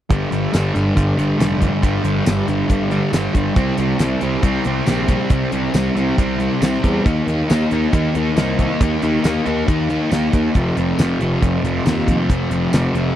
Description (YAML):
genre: classic rock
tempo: 138 BPM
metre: 4/4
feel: straight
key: G minor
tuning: A4 = 441 Hz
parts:
  - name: sludgy distorted guitar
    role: riff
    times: 0.1-13.2 s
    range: F2 to Eb4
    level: -18 LUFS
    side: equal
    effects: overdrive
  - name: fuzz picked electric bass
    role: bass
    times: 0.1-13.1 s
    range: F1 to E2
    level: -21 LUFS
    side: equal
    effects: overdrive
  - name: damped 70s drum kit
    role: drums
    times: 0.1-13.1 s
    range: hi-hat, kick drum, snare drum, tambourine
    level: -17 LUFS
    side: equal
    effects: none
room: little or no reverb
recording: dry, close 1970s-style studio recording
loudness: -15 LUFS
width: side -11 dB against mid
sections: 0.1-13.2 A section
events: none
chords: 0.1 G5; 3.6 C5; 7.1 Eb5; 10.6 F5